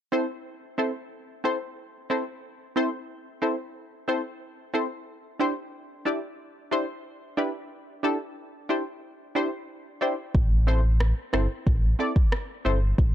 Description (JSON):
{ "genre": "dancehall", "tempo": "91 BPM", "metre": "4/4", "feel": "straight", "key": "A minor", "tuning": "A4 = 440 Hz", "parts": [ { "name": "punchy chord stab", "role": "accompaniment", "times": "0.1-12.8 s", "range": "C4 to D5", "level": "-28 LUFS", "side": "equal", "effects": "chorus" }, { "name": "sub bass with octave", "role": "bass", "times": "10.3-13.1 s", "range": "G1 to A1", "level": "-22 LUFS", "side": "equal", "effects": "none" }, { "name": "afro-pop drum kit", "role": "drums", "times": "10.3-13.1 s", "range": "kick drum, rim click", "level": "-23 LUFS", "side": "equal", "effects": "vintage 12-bit sampler grit" } ], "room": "little or no reverb", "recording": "dark, warm production", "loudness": "-24 LUFS", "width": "side -11 dB against mid", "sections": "0.0-13.1 A section", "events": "none", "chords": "0.0 Am; 5.1 Cadd9; 10.3 Am", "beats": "0.46 1.11 1.77 | 2.43 3.09 3.75 4.41 | 5.07 5.73 6.39 7.05 | 7.71 8.37 9.03 9.69 | 10.35 11.01 11.66 12.32 | 12.98" }